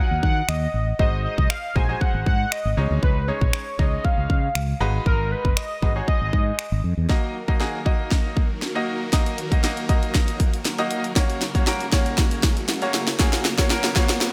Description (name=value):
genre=dance-pop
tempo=118 BPM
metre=4/4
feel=straight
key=Eb minor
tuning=A4 = 440 Hz
part: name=warm velvety synth lead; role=melody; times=0.0-6.8 s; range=Bb4 to Ab5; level=-30 LUFS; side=equal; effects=chorus, delay
part: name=bright grand piano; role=accompaniment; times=0.0-14.3 s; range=Gb3 to Eb5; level=-30 LUFS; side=equal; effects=sidechain pumping
part: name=mellow fretless electric bass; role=bass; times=0.1-7.1 s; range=Gb1 to Eb3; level=-26 LUFS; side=equal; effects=sidechain pumping
part: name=house drum kit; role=drums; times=0.2-14.3 s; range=finger snaps, hi-hat, kick drum, snare drum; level=-23 LUFS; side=equal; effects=none
part: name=supersaw chords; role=sustained chords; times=7.1-14.3 s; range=Db3 to Bb4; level=-35 LUFS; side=equal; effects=phaser, sidechain pumping
part: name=riser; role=sound effects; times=10.4-14.3 s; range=none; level=-38 LUFS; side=equal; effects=none
room=light reverb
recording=bright 1980s-style digital production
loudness=-22 LUFS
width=mono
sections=0.0-7.1 A section; 7.1-14.3 B section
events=build-up 7.1-14.3; drum fill 7.1-14.3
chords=0.0 Ebmadd9; 1.0 Ab7; 2.8 Dbsus2; 4.8 Abm7; 7.1 Ebm; 11.2 Gb